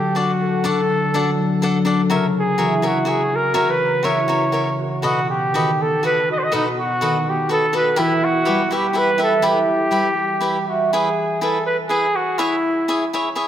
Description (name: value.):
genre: mexican folk, mariachi.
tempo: 123 BPM.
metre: 3/4.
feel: rubato.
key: E minor.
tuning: A4 = 439 Hz.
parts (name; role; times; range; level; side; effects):
mellow trumpet; melody; 0.0-13.1 s; D#4 to D#5; -20 LUFS; equal; diffuse ambient delay.
concert harp; arpeggios; 0.0-12.5 s; B2 to E5; -21 LUFS; equal; none.
cavaquinho; accompaniment; 0.1-13.5 s; D4 to F#5; -23 LUFS; left 2 dB; none.
room: wet plate reverb, RT60 2.4 s.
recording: dreamy mix soaked in reverb.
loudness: -16 LUFS.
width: side -10 dB against mid.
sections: 0.0-10.9 A section; 10.9-13.5 B section.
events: none.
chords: 0.0 D; 2.1 F#7/C#; 5.0 B7; 8.0 Em; 10.9 E; 12.4 C#m.